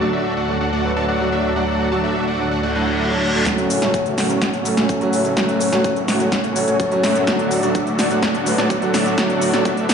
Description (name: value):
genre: EDM, festival progressive house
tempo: 126 BPM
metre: 4/4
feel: straight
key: F# minor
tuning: A4 = 441 Hz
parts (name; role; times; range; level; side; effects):
- warm concert grand piano; accompaniment; 0.0-9.7 s; F#3 to B4; -22 LUFS; right 2 dB; vintage 12-bit sampler grit, sidechain pumping, tape echo
- lush unison pad; sustained chords; 0.0-9.9 s; D3 to A4; -25 LUFS; left 2 dB; chorus, vintage 12-bit sampler grit, sidechain pumping
- dense compressed supersaw; riff; 0.0-9.9 s; A3 to A5; -22 LUFS; equal; sidechain pumping, low-pass filter, tape echo
- wide detuned saw bass; bass; 0.0-9.9 s; F#1 to F#2; -28 LUFS; left 1 dB; chorus, sidechain pumping, high-pass filter
- reverse cymbal; sound effects; 2.7-3.5 s; none; -24 LUFS; left 1 dB; none
- big-room dance drum kit; drums; 3.5-9.9 s; hi-hat, shaker, snare drum; -21 LUFS; equal; overdrive, low-pass filter on snare, low-pass filter on hats, low-pass filter on perc, low-pass filter on room
- electronic kick drum; drums; 3.5-9.7 s; none; -27 LUFS; equal; high-pass filter on kick
room: moderate scoring stage reverb, RT60 1.6 s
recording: played on a big sound system in a bare room, large studio reverb, nothing above 10.8 kHz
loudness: -16 LUFS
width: side -6 dB against mid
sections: 0.0-3.5 A section; 3.5-9.9 B section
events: reverse cymbal 2.7-3.5; build-up 3.5-9.9; drum fill 3.5-9.9; filter sweep on supersaw synth 3.5-9.9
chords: 0.0 D; 3.5 F#m; 7.3 D